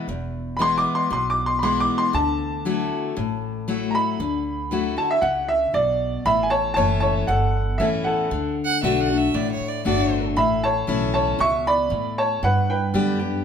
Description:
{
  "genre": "honky-tonk and classic country",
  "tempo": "117 BPM",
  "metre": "4/4",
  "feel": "straight",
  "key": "A mixolydian",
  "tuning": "A4 = 440 Hz",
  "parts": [
    { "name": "picked steel-string acoustic guitar", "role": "accompaniment", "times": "0.0-13.4 s", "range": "E2 to G4", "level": "-24 LUFS", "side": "left 4 dB", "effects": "none" },
    { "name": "upright bass", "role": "bass", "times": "0.1-13.4 s", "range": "E1 to A2", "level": "-28 LUFS", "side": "right 2 dB", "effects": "none" },
    { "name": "clear upright piano", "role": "melody", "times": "0.6-13.4 s", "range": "A4 to D6", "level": "-21 LUFS", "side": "right 1 dB", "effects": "none" },
    { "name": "clear fiddle", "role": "second line", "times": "8.6-10.2 s", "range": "C#5 to F#5", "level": "-26 LUFS", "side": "right 6 dB", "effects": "none" }
  ],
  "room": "moderate large studio reverb, RT60 1.1 s",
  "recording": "band playing live in one room",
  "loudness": "-19 LUFS",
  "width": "side -7 dB against mid",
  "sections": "0.0-6.3 A section; 6.3-13.4 B section",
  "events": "upright piano solo 0.0-6.3",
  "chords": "0.0 E; 2.1 Dadd9; 6.3 A; 8.3 D; 10.4 A; 12.4 G",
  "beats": "| 0.08 0.59 1.11 1.62 | 2.14 2.65 3.17 3.68 | 4.20 4.71 5.23 5.74 | 6.26 6.77 7.29 7.80 | 8.32 8.83 9.35 9.86 | 10.37 10.89 11.40 11.92 | 12.43 12.94"
}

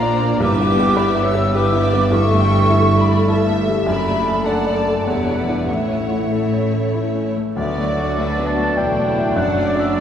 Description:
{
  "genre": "classical, romantic movement for piano and orchestra",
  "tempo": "93-106 BPM",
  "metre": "3/4",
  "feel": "rubato",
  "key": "D major",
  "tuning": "A4 = 440 Hz",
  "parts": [
    { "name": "clear chamber violin section", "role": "melody", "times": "0.0-10.0 s", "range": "A4 to E5", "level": "-33 LUFS", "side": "left 1 dB", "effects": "none" },
    { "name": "clear grand piano", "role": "melody", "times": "0.0-10.0 s", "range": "D2 to E5", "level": "-20 LUFS", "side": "left 1 dB", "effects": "none" },
    { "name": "bright flute section", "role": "second line", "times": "0.0-10.0 s", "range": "D5 to E6", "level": "-23 LUFS", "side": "equal", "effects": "none" },
    { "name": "warm studio violin section", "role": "second line", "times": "0.0-10.0 s", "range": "D4 to G5", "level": "-28 LUFS", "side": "left 1 dB", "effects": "none" },
    { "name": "rich chamber viola section", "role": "accompaniment", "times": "0.0-10.0 s", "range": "G3 to A4", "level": "-26 LUFS", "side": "equal", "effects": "none" },
    { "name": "mellow French horn section", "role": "sustained chords", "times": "0.0-10.0 s", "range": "F#3 to E4", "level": "-26 LUFS", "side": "left 1 dB", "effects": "none" },
    { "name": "clear chamber double bass section", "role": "bass", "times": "0.0-10.0 s", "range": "E1 to D2", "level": "-24 LUFS", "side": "right 1 dB", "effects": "none" },
    { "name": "warm chamber cello section", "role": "bass", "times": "0.0-10.0 s", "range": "D2 to Bb2", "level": "-25 LUFS", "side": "right 2 dB", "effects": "none" },
    { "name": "mellow clarinet", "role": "second line", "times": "7.6-10.0 s", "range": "D5", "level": "-27 LUFS", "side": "left 2 dB", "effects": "none" },
    { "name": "warm oboe", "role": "second line", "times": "7.6-10.0 s", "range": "D5 to A5", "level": "-25 LUFS", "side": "right 2 dB", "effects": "none" },
    { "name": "warm bassoon", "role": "accompaniment", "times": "7.6-10.0 s", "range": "F#3", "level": "-27 LUFS", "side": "left 2 dB", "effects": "none" },
    { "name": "timpani", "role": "percussion", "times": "7.6-8.4 s", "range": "D3", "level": "-34 LUFS", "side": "left 1 dB", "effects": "none" }
  ],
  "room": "wet concert hall reverb, RT60 2.1 s",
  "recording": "heard from further back in the room",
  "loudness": "-15 LUFS",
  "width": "side -9 dB against mid",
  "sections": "0.0-7.6 A section; 7.6-10.0 B section",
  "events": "none",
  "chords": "0.4 Em7/G; 2.1 A7/G; 3.9 D/F#; 5.1 Em7; 5.7 A; 7.6 D; 9.4 D/F#",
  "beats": "| 0.41 0.97 1.54 | 2.11 2.69 3.27 | 3.86 4.46 5.06 | 5.68 6.31 6.94 | 7.57 8.18 8.78 | 9.37 9.95"
}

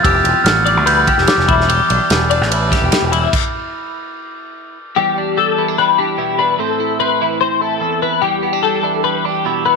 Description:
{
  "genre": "math rock and midwest emo",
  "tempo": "147 BPM",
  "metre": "4/4",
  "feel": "straight",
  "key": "unclear",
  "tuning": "A4 = 438 Hz",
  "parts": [
    { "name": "glockenspiel with rubber mallets", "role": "melody", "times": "0.0-1.6 s", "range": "D6 to G6", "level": "-17 LUFS", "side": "equal", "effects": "slapback echo" },
    { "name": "twelve-string electric guitar", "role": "accompaniment", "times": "0.0-9.8 s", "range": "E2 to A4", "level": "-21 LUFS", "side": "right 15 dB", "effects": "wide subtle chorus" },
    { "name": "twelve-string electric guitar", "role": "arpeggios", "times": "0.0-9.8 s", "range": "E4 to D5", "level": "-16 LUFS", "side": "left 13 dB", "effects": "ensemble chorus" },
    { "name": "growling picked electric bass", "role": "bass", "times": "0.0-3.3 s", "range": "E1 to D2", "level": "-18 LUFS", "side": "right 1 dB", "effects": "overdrive" },
    { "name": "modern studio drum kit", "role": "drums", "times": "0.0-3.4 s", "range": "crash cymbal, kick drum, ride cymbal, snare drum", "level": "-18 LUFS", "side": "right 1 dB", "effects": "none" }
  ],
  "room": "light reverb, small room ambience",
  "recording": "1960s-style stereo with parts hard left and right",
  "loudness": "-13 LUFS",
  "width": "side -4 dB against mid",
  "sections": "0.0-5.0 A section; 5.0-9.8 B section",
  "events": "stop 3.3-5.0",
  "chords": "0.0 Fmaj9#11; 1.5 Em7; 6.6 Am; 8.2 Em7",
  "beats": "| 0.05 0.46 0.87 1.28 | 1.69 2.10 2.51 2.92 | 3.33 3.74 4.15 4.56 | 4.96 5.37 5.78 6.19 | 6.60 7.00 7.41 7.82 | 8.22 8.63 9.04 9.45"
}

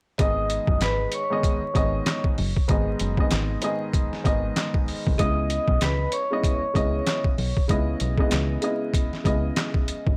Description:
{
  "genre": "hip hop, boom-bap hip-hop",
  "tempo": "96 BPM",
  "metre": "4/4",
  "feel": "swing 59% on 16ths",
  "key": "G# minor",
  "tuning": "A4 = 440 Hz",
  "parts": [
    { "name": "vibraphone with hard mallets", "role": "melody", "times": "0.2-7.2 s", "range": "B4 to D#6", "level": "-30 LUFS", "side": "equal", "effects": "high-pass filter, low-pass filter, tape echo" },
    { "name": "dark upright piano", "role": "accompaniment", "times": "0.2-10.1 s", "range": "G#2 to D#5", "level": "-30 LUFS", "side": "equal", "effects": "cassette tape, high-pass filter, low-pass filter" },
    { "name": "deep dub fingered electric bass", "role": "bass", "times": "0.2-10.2 s", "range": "F#1 to C#2", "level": "-28 LUFS", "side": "equal", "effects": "none" },
    { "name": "trip hop sampler-style drum kit", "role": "drums", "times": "0.2-10.2 s", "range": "handclaps, hi-hat, kick drum, snare drum", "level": "-26 LUFS", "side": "equal", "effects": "none" }
  ],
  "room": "small room ambience",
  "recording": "dry, gritty hardware recording, vinyl crackle",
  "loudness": "-24 LUFS",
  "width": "mono",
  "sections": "0.2-10.2 A section",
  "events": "none",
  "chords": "0.2 G#m; 5.2 C#m9",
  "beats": "| 0.19 0.82 1.44 2.07 | 2.69 3.32 3.94 4.57 | 5.19 5.82 6.44 7.07 | 7.69 8.32 8.94 9.57"
}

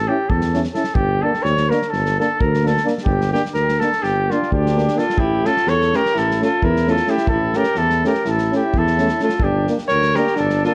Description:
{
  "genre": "balkan folk, Balkan brass band",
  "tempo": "256 BPM (eighths)",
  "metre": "9/8",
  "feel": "straight",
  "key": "A phrygian dominant",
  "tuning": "A4 = 442 Hz",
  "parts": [
    { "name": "mellow trumpet", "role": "melody", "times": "0.0-10.7 s", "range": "F4 to C#5", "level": "-22 LUFS", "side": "equal", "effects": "none" },
    { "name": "mellow tuba", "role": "bass", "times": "0.0-10.7 s", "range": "G1 to E2", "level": "-24 LUFS", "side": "equal", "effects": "none" },
    { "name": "warm euphonium", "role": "accompaniment", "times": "0.1-10.7 s", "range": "C#4 to E4", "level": "-30 LUFS", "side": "equal", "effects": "none" },
    { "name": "warm trombone", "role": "accompaniment", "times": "0.1-10.7 s", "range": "A3 to C#4", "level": "-28 LUFS", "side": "equal", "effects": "none" },
    { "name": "loose indie drum kit", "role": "percussion", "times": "0.3-10.7 s", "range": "kick drum, snare drum", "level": "-28 LUFS", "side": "equal", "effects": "none" },
    { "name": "warm alto saxophone", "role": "second line", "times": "4.3-10.7 s", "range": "D4 to Bb4", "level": "-25 LUFS", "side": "equal", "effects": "none" }
  ],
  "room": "moderate recital hall reverb, RT60 1.4 s",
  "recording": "worn, warbling old tape, cassette tape, warbly pitch drift",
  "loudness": "-18 LUFS",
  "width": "mono",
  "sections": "0.0-10.7 A section",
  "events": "none",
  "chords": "0.0 A; 1.0 Gm; 5.2 A; 9.4 Gm",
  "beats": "0.02 0.25 0.49 0.72 | 0.95 1.19 1.42 1.66 1.89 2.12 2.36 2.59 2.83 | 3.06 3.30 3.53 3.76 4.00 4.23 4.47 4.70 4.94 | 5.17 5.41 5.64 5.87 6.11 6.34 6.58 6.81 7.05 | 7.28 7.52 7.75 7.99 8.22 8.46 8.69 8.93 9.16 | 9.40 9.63 9.87 10.11 10.34 10.58"
}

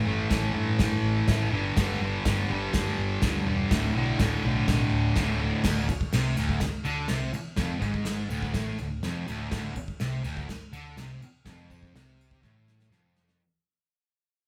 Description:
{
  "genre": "garage rock duo or trio",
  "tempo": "124 BPM",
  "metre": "4/4",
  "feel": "straight",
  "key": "unclear",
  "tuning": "A4 = 437 Hz",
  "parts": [
    { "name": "thick fuzz guitar", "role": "riff", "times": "0.0-13.4 s", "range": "D2 to A3", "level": "-30 LUFS", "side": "equal", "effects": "distortion" },
    { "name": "picked electric bass", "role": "bass", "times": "0.1-13.4 s", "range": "D1 to G2", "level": "-34 LUFS", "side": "equal", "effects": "none" },
    { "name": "soft brush drum kit", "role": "drums", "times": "0.3-13.4 s", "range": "crash cymbal, kick drum, ride cymbal, snare drum", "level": "-32 LUFS", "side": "equal", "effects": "none" }
  ],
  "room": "moderate large studio reverb, RT60 0.9 s",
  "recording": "band playing live in one room",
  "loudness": "-27 LUFS",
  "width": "mono",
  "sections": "0.0-5.6 A section; 5.6-13.4 B section",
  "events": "fade-out 5.6-13.4; drum fill 12.4-13.4",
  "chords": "0.0 A5; 1.5 G5; 3.7 D5",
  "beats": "0.31 0.80 1.29 | 1.77 2.26 2.75 3.23 | 3.71 4.20 4.68 5.17 | 5.65 6.13 6.61 7.10 | 7.58 8.06 8.55 9.03 | 9.52 10.00 10.48 10.97 | 11.46 11.94 12.43 12.91"
}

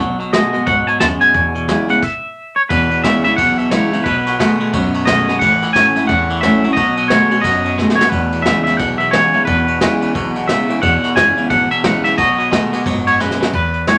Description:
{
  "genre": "rockabilly",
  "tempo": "177 BPM",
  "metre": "4/4",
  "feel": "swing 61% on 8ths",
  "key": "E major",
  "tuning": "A4 = 438 Hz",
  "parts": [
    { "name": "picked steel-string acoustic guitar", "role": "accompaniment", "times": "0.0-14.0 s", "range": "E2 to F#4", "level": "-22 LUFS", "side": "equal", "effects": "none" },
    { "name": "twangy electric guitar", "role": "riff", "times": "0.0-13.5 s", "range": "E2 to G#3", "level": "-23 LUFS", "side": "equal", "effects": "none" },
    { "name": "upright bass", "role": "bass", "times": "0.0-13.9 s", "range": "F#1 to E2", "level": "-27 LUFS", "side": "equal", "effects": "none" },
    { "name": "vintage brush drum kit", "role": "drums", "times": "0.2-14.0 s", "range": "crash cymbal, hi-hat, kick drum, ride cymbal, snare drum", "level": "-23 LUFS", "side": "equal", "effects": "none" },
    { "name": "twangy electric guitar", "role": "melody", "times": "0.3-14.0 s", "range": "B4 to A5", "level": "-18 LUFS", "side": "equal", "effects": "harmonic tremolo" }
  ],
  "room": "wet studio reverb, RT60 0.5 s",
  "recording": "none",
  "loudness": "-15 LUFS",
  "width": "mono",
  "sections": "0.0-2.7 A section; 2.7-13.5 B section",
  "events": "stop 2.0-2.7; drum fill 7.8-8.1, 13.2-13.5",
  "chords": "0.0 B7; 1.3 E; 4.1 B7; 5.4 A; 6.8 B7; 8.1 E; 12.2 B7",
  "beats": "0.33 0.67 1.01 | 1.35 1.69 2.02 2.36 | 2.70 3.04 3.38 3.72 | 4.06 4.40 4.74 5.07 | 5.41 5.75 6.09 6.43 | 6.77 7.10 7.44 7.78 | 8.12 8.46 8.80 9.13 | 9.47 9.81 10.15 10.49 | 10.82 11.16 11.50 11.84 | 12.18 12.52 12.86 13.20 | 13.54 13.88"
}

